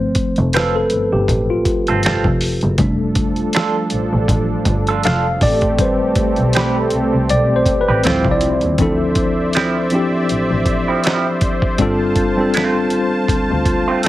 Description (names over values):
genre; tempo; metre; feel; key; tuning
R&B, neo-soul; 80 BPM; 4/4; swing 56% on 16ths; D dorian; A4 = 439 Hz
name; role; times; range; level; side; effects
mellow tine electric piano; accompaniment; 0.0-14.1 s; E3 to F5; -18 LUFS; left 2 dB; medium stereo tremolo, plate reverb
rich double bass; bass; 0.0-14.1 s; F1 to Eb2; -20 LUFS; equal; none
dusty soul sampler-style drum kit; drums; 0.1-14.1 s; finger snaps, hi-hat, kick drum, snare drum; -20 LUFS; equal; none
electric guitar through a small old amp; second line; 0.5-14.1 s; F3 to B4; -21 LUFS; right 5 dB; wah, plate reverb
warm analog pad; sustained chords; 2.8-14.1 s; D3 to A5; -21 LUFS; right 1 dB; chorus, plate reverb
room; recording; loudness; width
moderate studio reverb, RT60 0.8 s; heavily compressed radio sound; -14 LUFS; side -15 dB against mid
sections
0.0-8.8 A section; 8.8-14.1 B section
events
tine electric piano solo 0.0-8.8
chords
0.0 G9sus4; 2.8 F6; 5.4 Am9; 8.0 Dm11; 8.8 Dm9; 11.8 G9sus4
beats
0.53 1.28 2.03 | 2.78 3.53 4.28 5.03 | 5.78 6.53 7.28 8.03 | 8.78 9.53 10.28 11.03 | 11.78 12.53 13.28 14.03